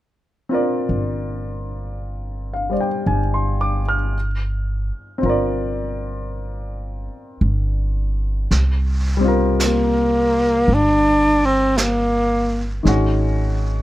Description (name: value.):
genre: jazz ballad.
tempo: 55 BPM.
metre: 4/4.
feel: swing 66% on 8ths.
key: unclear.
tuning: A4 = 444 Hz.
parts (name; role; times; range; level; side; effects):
warm grand piano; accompaniment; 0.5-13.8 s; Eb3 to F6; -23 LUFS; left 1 dB; none.
upright bass; bass; 0.9-13.8 s; G1 to C2; -21 LUFS; equal; none.
jazz brush drum kit; drums; 8.5-13.8 s; brushed snare drum, hi-hat, snare drum; -28 LUFS; right 3 dB; none.
breathy tenor saxophone; melody; 9.7-12.7 s; A3 to D4; -16 LUFS; equal; none.
room: little or no reverb.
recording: close, detailed microphones.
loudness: -17 LUFS.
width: side -15 dB against mid.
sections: 0.0-8.5 A section; 8.5-13.8 B section.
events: none.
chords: 0.0 Bb69/G; 8.5 C7sus4; 12.8 Ab7(no3).